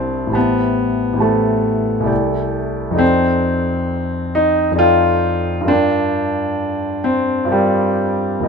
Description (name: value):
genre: classical, impressionist solo piano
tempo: 66 BPM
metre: 3/4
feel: uneven beats, rubato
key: unclear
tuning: A4 = 439 Hz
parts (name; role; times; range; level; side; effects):
- warm concert grand piano; solo; 0.0-8.5 s; A1 to A5; -15 LUFS; equal; none
room: light reverb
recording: none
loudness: -14 LUFS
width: side -5 dB against mid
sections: 0.0-8.5 A section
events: none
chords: 0.3 Am7; 2.1 C69; 3.0 F13; 5.7 Gm7